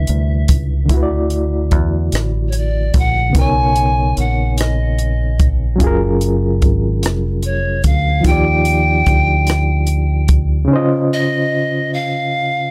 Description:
slow six-eight R&B; 49 BPM (dotted quarters); 6/8; straight; A4 = 439 Hz
breathy pan flute; melody; 0.0-12.7 s; Db5 to Ab5; -22 LUFS; equal
overdriven reed electric piano; accompaniment; 0.0-12.7 s; C3 to Eb5; -22 LUFS; equal; fast tremolo
deep dub fingered electric bass; bass; 0.0-10.7 s; F1 to E2; -19 LUFS; equal
compact cocktail drum kit; drums; 0.1-10.5 s; hi-hat, kick drum, rim click; -18 LUFS; equal
little or no reverb; -16 LUFS; mono
0.9-10.7 A section; 10.7-12.7 B section
0.0 Cmaj9; 0.9 Dadd9; 3.3 Cbmaj9; 5.8 Gbmaj9; 8.2 Ebmaj9; 10.7 Dbmaj9

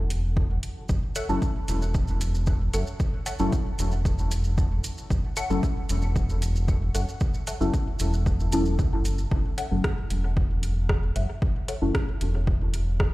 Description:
dub techno; 114 BPM; 4/4; straight; F# minor; A4 = 443 Hz
round analog bass; bass; 0.0-13.1 s; E1 to C#2; -25 LUFS; equal; sidechain pumping
deep house drum kit; drums; 0.1-13.1 s; hi-hat, rim click; -35 LUFS; right 1 dB; overdrive, dub echo
electronic kick drum; drums; 0.4-13.1 s; -26 LUFS; equal; overdrive
maracas; percussion; 0.9-9.3 s; -39 LUFS; right 3 dB
filtered dub chord stab; riff; 1.2-11.8 s; A4 to F#5; -38 LUFS; left 2 dB; phaser, analog chorus, sidechain pumping, dub echo
deep mellow chord stab; stabs; 1.3-11.9 s; F#3 to A4; -31 LUFS; left 1 dB; chorus, phaser, sidechain pumping, dub echo
digital ambience; played on a big sound system in a bare room, large studio reverb; -23 LUFS; side -18 dB against mid
0.0-9.3 A section; 9.3-13.1 A section
0.0 F#m7

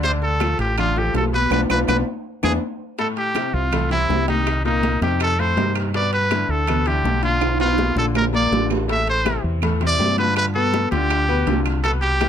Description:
latin, salsa; 163 BPM; 4/4; straight; A4 = 440 Hz
bright trumpet; melody; 0.0-12.3 s; D#4 to E5; -21 LUFS; right 1 dB
bright upright piano; accompaniment; 0.0-12.3 s; A2 to D5; -25 LUFS; left 5 dB
fingered electric bass; bass; 0.0-12.3 s; A1 to G2; -22 LUFS; equal
bongos; percussion; 0.0-12.3 s; -31 LUFS; left 7 dB
congas; percussion; 0.0-12.3 s; -28 LUFS; left 1 dB
timbales; percussion; 0.0-12.3 s; -28 LUFS; right 7 dB
claves; percussion; 0.4-12.3 s; -30 LUFS; right 8 dB
light reverb; close, detailed microphones, lossy compression artefacts; -17 LUFS; side -9 dB against mid
0.0-3.0 A section; 3.0-12.3 B section
band accent 1.5-3.0; drum fill 2.4-3.0, 7.4-8.9
0.0 Dm; 1.5 Bdim; 2.3 E7(no3); 3.0 Fmaj9; 4.5 Cm7; 5.2 F9; 5.9 G6; 7.4 Bdim; 8.2 Bb; 8.9 Am7; 10.4 G7

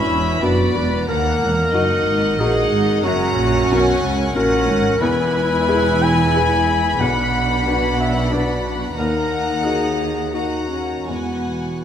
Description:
cinematic; 91 BPM; 3/4; rubato; E lydian; A4 = 437 Hz
clear studio violin section; melody; 0.0-11.8 s; F#5 to B5; -27 LUFS; left 1 dB
mellow clarinet; second line; 0.0-11.8 s; E4 to G#5; -21 LUFS; left 1 dB
rich symphonic violin section; second line; 0.0-11.8 s; D5 to G#5; -26 LUFS; left 3 dB
felt-muted upright piano; accompaniment; 0.0-11.8 s; B1 to B4; -24 LUFS; left 2 dB
warm studio viola section; accompaniment; 0.0-11.8 s; A#3 to E4; -26 LUFS; right 1 dB
dark studio double bass section; bass; 0.0-11.8 s; E1 to D#2; -25 LUFS; right 2 dB
warm studio cello section; bass; 0.0-11.8 s; D#2 to C#3; -24 LUFS; right 2 dB
moderate scoring stage reverb, RT60 2.0 s; -16 LUFS; side -9 dB against mid
0.0-11.8 A section
0.0 Bm; 1.1 D#m; 3.0 F#; 5.0 E; 7.0 Bm; 9.0 D#m; 11.1 Eadd9

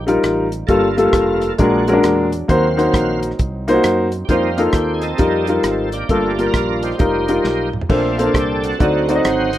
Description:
uptempo gospel; 133 BPM; 4/4; swing 64% on 8ths; A4 = 440 Hz
bright tonewheel organ; sustained chords; 0.0-9.6 s; Gb3 to F5; -24 LUFS; right 4 dB; slow rotary speaker, overdrive, chorus vibrato
warm French horn section; sustained chords; 0.0-9.6 s; F3 to A4; -31 LUFS; right 2 dB
fingered electric bass; bass; 0.0-9.6 s; F1 to Gb2; -26 LUFS; right 1 dB
warm upright piano; accompaniment; 0.1-9.5 s; G2 to Eb5; -15 LUFS; left 1 dB
warm soul drum kit; drums; 0.1-9.6 s; crash cymbal, hi-hat, kick drum, rim click, snare drum, toms; -20 LUFS; right 1 dB
light reverb; rough home demo mix; -14 LUFS; side -13 dB against mid
0.0-9.6 A section
tonewheel organ solo 0.0-9.6; drum fill 7.4-7.9
0.0 F9sus4; 0.7 Gm9; 1.6 Bb7b13; 2.5 Ebm6; 4.3 F7sus4; 5.2 F9sus4; 6.1 Gm9; 7.0 F9sus4; 7.9 Bbmaj9; 8.8 D7b9

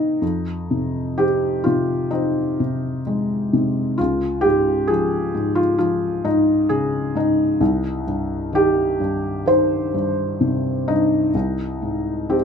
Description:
classical, lyrical solo piano; 64 BPM; 4/4; rubato; F minor; A4 = 441 Hz
felt-muted upright piano; solo; 0.0-12.4 s; C2 to Eb5; -18 LUFS; left 1 dB
light reverb; close, detailed microphones; -18 LUFS; side -7 dB against mid
0.2-12.4 A section
0.2 Fm7; 4.0 Db; 7.6 Cm; 11.3 Ab/C

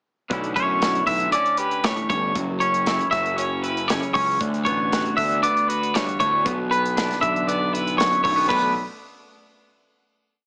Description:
math rock and midwest emo; 117 BPM; 4/4; straight; B minor; A4 = 439 Hz
twelve-string electric guitar; accompaniment; 0.3-8.7 s; D2 to G4; -30 LUFS; equal; spring reverb
fuzz picked electric bass; bass; 0.3-8.7 s; F#1 to F#2; -31 LUFS; equal; overdrive
modern studio drum kit; drums; 0.3-8.6 s; crash cymbal, hi-hat, kick drum, snare drum; -31 LUFS; equal
twangy electric guitar; arpeggios; 0.6-8.7 s; B4 to E5; -24 LUFS; equal; slapback echo, plate reverb
moderate studio reverb, RT60 0.5 s; small speaker sound; -22 LUFS; mono
0.3-8.5 A section; 8.5-10.5 final chord
0.3 Bm11; 2.3 F#5; 4.4 D6; 6.4 Bm; 8.5 Bm7

